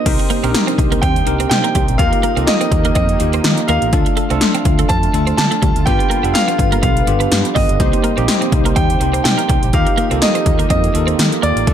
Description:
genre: 1980s-style pop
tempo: 124 BPM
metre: 4/4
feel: swing 55% on 16ths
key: C dorian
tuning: A4 = 440 Hz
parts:
  - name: clear concert grand piano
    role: melody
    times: 0.0-11.7 s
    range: D5 to A5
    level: -20 LUFS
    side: right 2 dB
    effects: tape echo
  - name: bell-like tine electric piano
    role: accompaniment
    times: 0.0-11.7 s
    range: A3 to Bb4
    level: -21 LUFS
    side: left 1 dB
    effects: medium stereo tremolo
  - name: sweeping resonant pad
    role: sustained chords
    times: 0.1-11.7 s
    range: C3 to B4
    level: -27 LUFS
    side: equal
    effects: chorus
  - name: funky polysynth comp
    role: stabs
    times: 0.1-11.7 s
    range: D4 to C5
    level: -27 LUFS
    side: left 2 dB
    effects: chorus, tape echo
  - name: vintage muted fingered electric bass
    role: bass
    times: 0.1-11.7 s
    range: F1 to Eb3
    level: -19 LUFS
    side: equal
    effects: none
  - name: 80s electronic pad drums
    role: drums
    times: 0.1-11.7 s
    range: crash cymbal, hi-hat, kick drum, snare drum, tambourine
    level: -17 LUFS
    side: equal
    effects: overdrive
  - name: twelve-string electric guitar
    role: riff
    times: 0.2-11.5 s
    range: G3 to C4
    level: -24 LUFS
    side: right 5 dB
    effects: analog chorus
room: light reverb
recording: dark, warm production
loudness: -12 LUFS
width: side -9 dB against mid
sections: 0.1-11.7 A section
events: none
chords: 0.1 Cm7; 2.0 Ebadd9; 3.9 Dm; 5.9 G7; 7.8 Cm7; 9.7 Ebadd9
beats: | 0.06 0.54 1.03 1.51 | 1.99 2.48 2.96 3.44 | 3.93 4.41 4.90 5.38 | 5.86 6.35 6.83 7.32 | 7.80 8.28 8.77 9.25 | 9.73 10.22 10.70 11.19 | 11.67

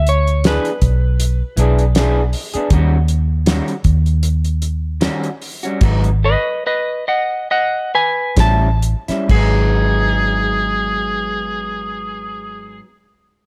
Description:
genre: straight-eighth soul blues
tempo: 63-79 BPM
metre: 4/4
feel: swing 56% on 16ths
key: G# minor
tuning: A4 = 440 Hz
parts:
  - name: clean lap steel guitar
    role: melody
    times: 0.0-12.8 s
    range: G#4 to A5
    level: -21 LUFS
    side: equal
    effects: none
  - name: vintage muted fingered electric bass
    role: bass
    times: 0.0-12.8 s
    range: G#1 to D#2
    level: -18 LUFS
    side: equal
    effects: none
  - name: damped 70s drum kit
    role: drums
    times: 0.1-9.5 s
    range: crash cymbal, hi-hat, kick drum, snare drum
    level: -20 LUFS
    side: equal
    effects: none
  - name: electric guitar through a small old amp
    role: stabs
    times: 0.4-12.9 s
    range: G#2 to G#4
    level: -24 LUFS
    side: equal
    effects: none
  - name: mellow harmonica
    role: second line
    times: 9.3-12.8 s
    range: G#4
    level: -23 LUFS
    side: equal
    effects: overdrive
room: little or no reverb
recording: none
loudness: -17 LUFS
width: mono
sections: 0.0-9.3 A section; 9.3-13.1 B section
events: slowing down 2.7-9.3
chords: 0.0 E7; 2.7 D#7#9; 5.8 G#m7; 8.4 A7; 9.3 G#m7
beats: 0.44 1.20 1.95 | 2.71 3.46 4.23 5.01 | 5.81 6.63 7.48 8.37 | 9.29 10.24 11.18 12.13

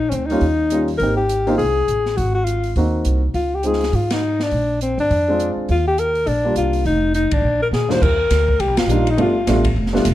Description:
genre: jazz, small-group swing and bop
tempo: 205 BPM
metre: 4/4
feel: swing 60% on 8ths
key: Eb major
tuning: A4 = 440 Hz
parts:
  - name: warm alto saxophone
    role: melody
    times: 0.0-9.6 s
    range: C4 to C5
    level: -19 LUFS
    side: left 2 dB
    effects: none
  - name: upright bass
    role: bass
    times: 0.0-10.1 s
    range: Fb1 to Bb2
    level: -21 LUFS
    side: right 1 dB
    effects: none
  - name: open jazz drum kit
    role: drums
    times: 0.1-10.1 s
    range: crash cymbal, hi-hat, kick drum, ride cymbal, snare drum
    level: -25 LUFS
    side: right 1 dB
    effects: none
  - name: warm upright piano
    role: accompaniment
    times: 0.3-10.0 s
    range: Eb2 to G4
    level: -21 LUFS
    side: equal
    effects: none
room: light reverb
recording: dark, warm production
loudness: -16 LUFS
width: side -14 dB against mid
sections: 0.0-8.0 A section; 8.0-10.1 B section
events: band accent 4.1, 7.3, 8.7; drum fill 7.7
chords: 0.4 Eb9; 1.0 Abmaj9; 2.2 Ab7; 3.3 Dbmaj7; 4.5 Bb7; 5.7 Ebmaj9; 6.9 Fm7; 7.4 Bb; 8.0 Ebmaj7; 9.2 G9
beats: 0.12 0.42 0.71 | 1.00 1.29 1.59 1.88 | 2.17 2.47 2.76 3.05 | 3.35 3.64 3.93 4.22 | 4.52 4.81 5.10 5.39 | 5.69 5.98 6.27 6.56 | 6.85 7.14 7.44 7.73 | 8.02 8.31 8.60 8.89 | 9.18 9.47 9.76 10.05

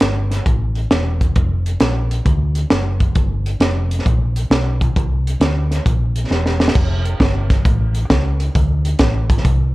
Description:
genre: uptempo gospel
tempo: 134 BPM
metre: 4/4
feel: swing 65% on 8ths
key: F major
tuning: A4 = 440 Hz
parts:
  - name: hollow-body short-scale fingered electric bass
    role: bass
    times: 0.0-9.7 s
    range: E1 to D2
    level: -18 LUFS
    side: equal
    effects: none
  - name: crisp fusion drum kit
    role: drums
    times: 0.0-9.6 s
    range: crash cymbal, hi-hat, kick drum, snare drum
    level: -17 LUFS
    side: equal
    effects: none
room: little or no reverb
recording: worn, warbling old tape, cassette tape, warbly pitch drift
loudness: -14 LUFS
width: side -19 dB against mid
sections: 0.0-6.8 A section; 6.8-9.7 B section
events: drum fill 6.3-6.8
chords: none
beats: 0.01 0.46 0.91 | 1.36 1.81 2.26 2.71 | 3.16 3.61 4.06 4.51 | 4.96 5.41 5.86 6.30 | 6.75 7.20 7.65 8.10 | 8.55 9.00 9.45

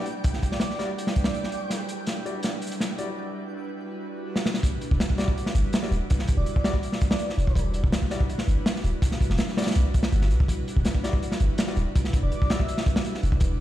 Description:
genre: drum and bass, jungle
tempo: 164 BPM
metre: 4/4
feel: straight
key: E minor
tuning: A4 = 438 Hz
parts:
  - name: airy breathy pad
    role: sustained chords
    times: 0.0-13.6 s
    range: F#3 to B4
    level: -34 LUFS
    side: equal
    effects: chorus, vintage 12-bit sampler grit
  - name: clear concert grand piano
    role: stabs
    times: 0.0-12.6 s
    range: G3 to D5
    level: -36 LUFS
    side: left 3 dB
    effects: dub echo
  - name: twinkling granular texture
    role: texture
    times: 0.0-3.2 s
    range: G5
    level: -42 LUFS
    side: right 2 dB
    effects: built-in reverb
  - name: crunchy breakbeat drum kit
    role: drums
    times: 0.1-13.5 s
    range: hi-hat, kick drum, snare drum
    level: -24 LUFS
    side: equal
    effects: none
  - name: airy dreamy lead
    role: melody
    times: 0.5-1.8, 6.4-7.6, 12.2-12.8 s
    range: D5 to E5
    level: -36 LUFS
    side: right 1 dB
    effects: chorus, dub echo
  - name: warm 808-style bass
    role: bass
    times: 4.9-13.6 s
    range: D1 to B1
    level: -23 LUFS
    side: equal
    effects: none
room: light reverb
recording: played on a big sound system in a bare room, stone room reverb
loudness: -23 LUFS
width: side -13 dB against mid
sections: 0.0-4.6 A section; 4.6-13.6 B section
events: build-up 0.0-4.6; drum fill 1.7-3.2, 4.4; drop 4.6-13.6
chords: 0.0 Em9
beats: | 0.24 0.61 0.97 1.34 | 1.71 2.07 2.44 2.80 | 3.17 3.54 3.90 4.27 | 4.63 5.00 5.37 5.73 | 6.10 6.46 6.83 7.20 | 7.56 7.93 8.29 8.66 | 9.02 9.39 9.76 10.12 | 10.49 10.85 11.22 11.59 | 11.95 12.32 12.68 13.05 | 13.41

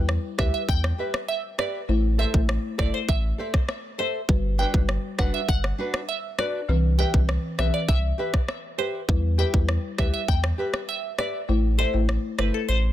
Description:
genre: dancehall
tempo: 100 BPM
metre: 4/4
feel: straight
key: unclear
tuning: A4 = 440 Hz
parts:
  - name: folk marimba with soft mallets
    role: accompaniment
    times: 0.0-12.7 s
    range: E3 to C5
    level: -31 LUFS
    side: left 3 dB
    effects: none
  - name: saturated sub bass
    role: bass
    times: 0.0-12.9 s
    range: F#1 to E2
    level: -24 LUFS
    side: equal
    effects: none
  - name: island pop drum kit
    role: drums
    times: 0.1-12.5 s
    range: kick drum, rim click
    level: -25 LUFS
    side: equal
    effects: soft clipping on snare
  - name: glassy wavetable pluck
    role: melody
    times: 0.4-12.9 s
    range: A4 to G5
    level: -30 LUFS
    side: right 1 dB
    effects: chorus, ping-pong delay
  - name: nylon-string guitar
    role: arpeggios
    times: 0.4-12.6 s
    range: D4 to E5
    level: -32 LUFS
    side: equal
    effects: ping-pong delay
room: studio ambience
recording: dense, heavily limited modern master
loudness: -22 LUFS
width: side -13 dB against mid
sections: 0.0-12.9 A section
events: break 0.0-4.3; kick muted 11.5-12.9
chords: 0.0 Em; 1.9 Am; 4.3 Gmaj7; 6.7 Cmaj7; 9.1 Em; 11.5 Am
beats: 0.09 0.69 1.29 | 1.89 2.49 3.09 3.69 | 4.29 4.89 5.49 6.09 | 6.69 7.29 7.89 8.49 | 9.09 9.69 10.29 10.89 | 11.49 12.09 12.69

